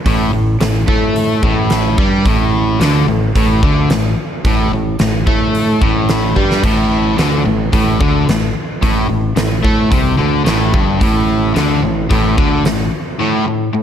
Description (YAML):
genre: hard rock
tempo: 110 BPM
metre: 4/4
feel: straight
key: unclear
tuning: A4 = 436 Hz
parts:
  - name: biting overdriven guitar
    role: riff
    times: 0.1-13.8 s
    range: G2 to A3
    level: -17 LUFS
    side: left 9 dB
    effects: none
  - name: overdriven semi-hollow guitar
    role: riff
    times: 0.1-13.8 s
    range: G2 to A3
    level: -18 LUFS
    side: right 9 dB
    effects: none
  - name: modern bright fingered electric bass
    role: bass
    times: 0.1-12.9 s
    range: G1 to A2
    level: -18 LUFS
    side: equal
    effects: none
  - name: huge arena drum kit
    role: drums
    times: 0.1-12.8 s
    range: crash cymbal, hi-hat, kick drum, snare drum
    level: -17 LUFS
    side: equal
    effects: none
room: studio ambience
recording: none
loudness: -12 LUFS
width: side -9 dB against mid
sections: 0.0-13.8 A section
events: drum fill 6.4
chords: 0.0 Gsus2